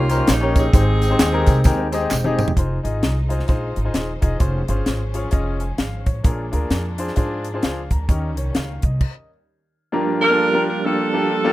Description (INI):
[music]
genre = uptempo gospel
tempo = 131 BPM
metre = 4/4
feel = swing 61% on 8ths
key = unclear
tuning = A4 = 440 Hz
[part]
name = edgy saxophone section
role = melody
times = 0.0-2.1, 10.2-11.5 s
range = Bb3 to Bb4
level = -20 LUFS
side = right 1 dB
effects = none
[part]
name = clear baby grand piano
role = accompaniment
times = 0.0-11.5 s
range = G2 to Bb5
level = -24 LUFS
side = left 3 dB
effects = none
[part]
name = mellow tonewheel organ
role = sustained chords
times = 0.0-2.5, 9.9-11.5 s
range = F3 to G5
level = -24 LUFS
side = right 4 dB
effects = fast rotary speaker, chorus vibrato
[part]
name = upright bass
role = bass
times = 0.0-9.0 s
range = Eb1 to Ab2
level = -22 LUFS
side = equal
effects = none
[part]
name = tight funk drum kit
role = drums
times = 0.1-9.1 s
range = crash cymbal, hi-hat, kick drum, snare drum, toms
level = -18 LUFS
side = equal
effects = none
[part]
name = tambourine and handclaps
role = percussion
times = 0.1-2.5 s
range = none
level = -31 LUFS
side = right 2 dB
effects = none
[part]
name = rich studio string section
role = sustained chords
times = 2.6-9.0 s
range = Eb3 to C5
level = -36 LUFS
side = equal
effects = none
[sound]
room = little or no reverb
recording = rough home demo mix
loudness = -17 LUFS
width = side -16 dB against mid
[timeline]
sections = 0.0-2.6 A section; 2.6-9.9 B section; 9.9-11.5 A section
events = drum fill 2.1-2.6; stop 9.0-9.9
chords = 0.0 Eb7; 0.7 Abmaj7; 2.6 Fm7; 4.4 Dbmaj7/F; 6.2 Bb7; 8.1 Eb7; 9.0 N.C.; 9.9 Gm7